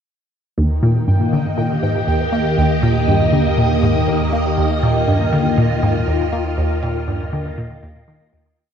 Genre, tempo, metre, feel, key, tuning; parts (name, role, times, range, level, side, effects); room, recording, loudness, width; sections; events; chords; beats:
ambient, sequencer-driven space music; 120 BPM; 4/4; straight; Eb major; A4 = 440 Hz
phased string machine; sustained chords; 0.6-8.6 s; Eb3 to Eb5; -19 LUFS; left 1 dB; ensemble chorus, phaser
resonant blip pluck; riff; 0.6-8.5 s; Eb2 to Bb3; -18 LUFS; equal; phaser, vintage 12-bit sampler grit, tape echo
analog drone; bass; 2.0-8.6 s; Eb2; -25 LUFS; equal; chorus
pulsing gated texture; texture; 0.9-8.6 s; G5; -27 LUFS; right 3 dB; chorus, built-in reverb
moderate spring reverb, RT60 2.7 s; echo-heavy mix, cassette tape; -15 LUFS; side -8 dB against mid
0.6-8.6 A section
fade-out 5.9-8.6
0.6 Eb
| 0.58 1.08 1.58 2.08 | 2.58 3.08 3.58 4.08 | 4.58 5.08 5.58 6.08 | 6.58 7.08 7.58 8.08